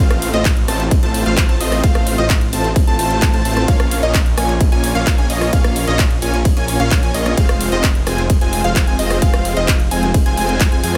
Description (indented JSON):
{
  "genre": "EDM, festival progressive house",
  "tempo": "130 BPM",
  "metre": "4/4",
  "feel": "straight",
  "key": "unclear",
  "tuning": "A4 = 440 Hz",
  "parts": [
    { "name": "plucky unison lead", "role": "arpeggios", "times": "0.0-11.0 s", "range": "Eb5 to A5", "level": "-25 LUFS", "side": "equal", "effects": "subtle chorus, sidechain pumping, dub echo" },
    { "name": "supersaw chords", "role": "riff", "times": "0.0-11.0 s", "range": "Ab3 to A5", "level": "-23 LUFS", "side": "equal", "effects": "vintage 12-bit sampler grit, sidechain pumping, dub echo" },
    { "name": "detuned saw bass", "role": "bass", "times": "0.0-11.0 s", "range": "F1 to F2", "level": "-23 LUFS", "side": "equal", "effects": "sidechain pumping" },
    { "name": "big-room dance drum kit", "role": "drums", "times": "0.1-11.0 s", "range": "handclaps, hi-hat, ride cymbal, rim click", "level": "-25 LUFS", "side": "equal", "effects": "studio reverb" },
    { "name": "electronic kick drum", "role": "drums", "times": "0.5-10.7 s", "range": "none", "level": "-17 LUFS", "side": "equal", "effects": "studio reverb" }
  ],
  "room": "little or no reverb",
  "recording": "none",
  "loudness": "-15 LUFS",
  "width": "mono",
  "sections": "0.0-11.0 A section",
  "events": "none",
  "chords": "0.0 F/A; 3.7 Bbm; 7.4 Fm"
}